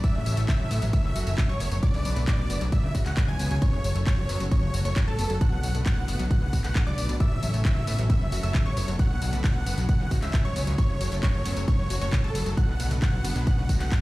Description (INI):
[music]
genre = uplifting trance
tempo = 134 BPM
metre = 4/4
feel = straight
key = F# minor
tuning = A4 = 440 Hz
[part]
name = big supersaw lead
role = melody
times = 0.0-14.0 s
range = A4 to G#5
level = -34 LUFS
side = right 1 dB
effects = sidechain pumping, digital delay
[part]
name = wide unison pluck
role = second line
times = 0.0-14.0 s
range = A5 to G#6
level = -43 LUFS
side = right 1 dB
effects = none
[part]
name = supersaw pad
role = sustained chords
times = 0.0-14.0 s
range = E3 to C#5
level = -38 LUFS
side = equal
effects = sidechain pumping
[part]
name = analog pluck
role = arpeggios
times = 0.0-13.9 s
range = C#3 to F#4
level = -34 LUFS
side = left 3 dB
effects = chorus, sidechain pumping, digital delay
[part]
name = electronic kick drum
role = drums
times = 0.0-14.0 s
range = none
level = -23 LUFS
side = equal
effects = none
[part]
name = house drum kit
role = drums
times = 0.0-14.0 s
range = handclaps, hi-hat, ride cymbal, tambourine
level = -36 LUFS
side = left 1 dB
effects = none
[part]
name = plucky analog bass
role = bass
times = 0.2-13.9 s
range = F#1 to A2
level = -27 LUFS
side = equal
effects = sidechain pumping
[sound]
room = little or no reverb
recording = played on a big sound system in a bare room, large studio reverb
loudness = -22 LUFS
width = side -19 dB against mid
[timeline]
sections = 0.0-14.0 A section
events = none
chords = 0.0 A; 0.9 F#m; 1.8 Bm7; 2.7 C#m; 3.6 F#m; 5.4 Bm7; 7.2 A; 8.1 F#m; 9.0 Bm7; 9.9 C#m; 10.8 F#m; 12.6 Bm7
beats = | 0.04 0.49 0.93 1.38 | 1.83 2.28 2.73 3.17 | 3.62 4.07 4.52 4.96 | 5.41 5.86 6.31 6.75 | 7.20 7.65 8.10 8.55 | 8.99 9.44 9.89 10.34 | 10.78 11.23 11.68 12.13 | 12.57 13.02 13.47 13.92